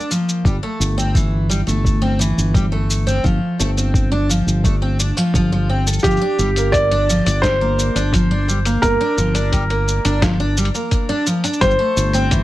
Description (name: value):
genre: folktronica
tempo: 86 BPM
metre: 4/4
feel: straight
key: G dorian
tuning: A4 = 440 Hz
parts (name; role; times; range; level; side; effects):
- picked twelve-string acoustic guitar; arpeggios; 0.0-12.4 s; E3 to A4; -20 LUFS; equal; vintage 12-bit sampler grit, ping-pong delay
- lo-fi sampler-style drum kit; drums; 0.0-12.4 s; cabasa, hi-hat, snare drum; -24 LUFS; equal; studio ambience
- fingered electric bass; bass; 0.4-12.4 s; G1; -19 LUFS; equal; none
- electronic kick drum; drums; 0.5-12.4 s; none; -19 LUFS; equal; studio ambience
- felt-muted upright piano; melody; 6.0-12.4 s; G4 to D5; -19 LUFS; equal; plate reverb, ping-pong delay
room: light reverb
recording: none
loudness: -15 LUFS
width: side -16 dB against mid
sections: 0.0-12.4 A section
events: none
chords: 0.5 Am7/G; 3.2 Dm7/G (rootless); 6.0 Gm7; 11.6 Am7/G